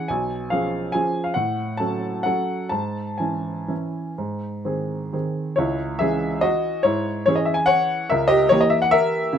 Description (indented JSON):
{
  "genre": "classical, piano waltz",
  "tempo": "118-156 BPM",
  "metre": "3/4",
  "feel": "rubato",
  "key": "C# minor",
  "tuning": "A4 = 440 Hz",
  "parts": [
    { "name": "warm upright piano", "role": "solo", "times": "0.0-9.4 s", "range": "B1 to A5", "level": "-20 LUFS", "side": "equal", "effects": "none" }
  ],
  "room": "light reverb",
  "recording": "none",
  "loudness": "-20 LUFS",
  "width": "side -8 dB against mid",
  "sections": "0.0-5.6 A section; 5.6-9.4 B section",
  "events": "none",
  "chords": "0.1 C#7/B; 1.4 F#m/A; 2.7 C#m/G#; 4.2 G#; 5.6 C#m; 8.1 C#dim7"
}